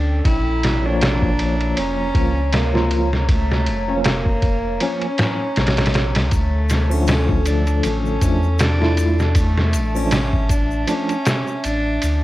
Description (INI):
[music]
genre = trip hop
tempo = 79 BPM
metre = 4/4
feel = swing 56% on 16ths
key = D harmonic minor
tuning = A4 = 439 Hz
[part]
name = rich cello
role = melody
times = 0.0-12.2 s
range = A3 to E4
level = -24 LUFS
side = equal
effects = cassette tape, tape echo, plate reverb
[part]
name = warbly tape-like pad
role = sustained chords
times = 0.0-12.2 s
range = A4 to Bb5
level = -28 LUFS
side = equal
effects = chorus, built-in reverb, plate reverb
[part]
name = warm sub bass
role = bass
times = 0.0-12.2 s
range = F1 to E2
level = -20 LUFS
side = equal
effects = tube saturation
[part]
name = trip hop sampler-style drum kit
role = drums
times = 0.3-12.2 s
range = kick drum, ride cymbal, snare drum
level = -20 LUFS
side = equal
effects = none
[part]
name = tine electric piano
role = accompaniment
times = 0.8-11.1 s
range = D3 to Db5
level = -24 LUFS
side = equal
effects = medium stereo tremolo, plate reverb
[part]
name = egg shaker and triangle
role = percussion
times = 6.3-12.2 s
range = none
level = -38 LUFS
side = left 9 dB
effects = none
[sound]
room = light reverb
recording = home recording on cassette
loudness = -16 LUFS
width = side -16 dB against mid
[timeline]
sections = 0.0-12.2 A section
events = none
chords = 0.2 Bbm; 6.3 Dm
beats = | 0.25 1.01 1.77 2.53 | 3.29 4.05 4.81 5.57 | 6.33 7.08 7.84 8.60 | 9.36 10.12 10.88 11.64